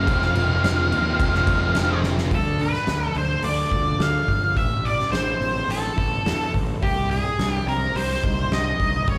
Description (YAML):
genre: quiet-loud alternative rock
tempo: 106 BPM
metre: 4/4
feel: straight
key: unclear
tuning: A4 = 441 Hz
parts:
  - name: octave-fuzz lead guitar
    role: melody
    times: 0.0-9.2 s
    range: G4 to F5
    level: -26 LUFS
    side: equal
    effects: distortion, slapback echo
  - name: distorted electric guitar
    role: riff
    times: 0.0-2.3 s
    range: F2 to C4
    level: -36 LUFS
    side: equal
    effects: none
  - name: fuzz guitar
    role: riff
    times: 0.0-2.3 s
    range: F2 to C4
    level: -34 LUFS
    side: equal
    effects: none
  - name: thick fuzz guitar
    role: riff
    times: 0.0-2.3 s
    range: F2 to C4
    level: -31 LUFS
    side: equal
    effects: distortion
  - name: fuzz picked electric bass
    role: bass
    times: 0.0-9.2 s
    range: F1 to E2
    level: -27 LUFS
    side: equal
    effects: overdrive
  - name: oversized low-tuned drum kit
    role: drums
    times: 0.1-9.2 s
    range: crash cymbal, hi-hat, kick drum, snare drum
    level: -28 LUFS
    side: equal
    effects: none
  - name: fingerpicked steel-string acoustic guitar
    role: arpeggios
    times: 2.3-9.2 s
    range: Ab2 to A4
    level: -35 LUFS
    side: equal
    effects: none
room: small room ambience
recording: live gig heard through the venue's PA, club reverb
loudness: -22 LUFS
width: mono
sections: 0.0-2.3 A section; 2.3-9.2 B section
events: drum fill 2.0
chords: 0.1 Fm; 2.3 Dm; 4.6 Am; 6.8 Cm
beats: | 0.07 0.63 1.19 1.75 | 2.32 2.88 3.44 4.01 | 4.57 5.13 5.70 6.26 | 6.83 7.39 7.96 8.52 | 9.08